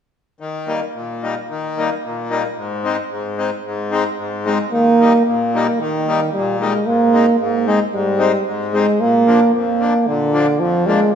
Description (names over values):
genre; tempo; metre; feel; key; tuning
alpine folk, alpine dance band; 112 BPM; 2/4; straight; Eb major; A4 = 441 Hz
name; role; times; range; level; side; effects
accordion; accompaniment; 0.4-11.0 s; F2 to Eb4; -20 LUFS; left 3 dB; none
warm euphonium; melody; 4.5-11.1 s; D3 to Bb3; -15 LUFS; right 2 dB; none
room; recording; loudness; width
wet recital hall reverb, RT60 1.7 s; minimal, uncompressed stereo recording; -15 LUFS; side -8 dB against mid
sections
0.4-4.7 A section; 4.7-11.2 B section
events
none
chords
0.4 Eb; 2.6 Ab; 4.7 Eb; 6.9 Ab; 9.0 Bb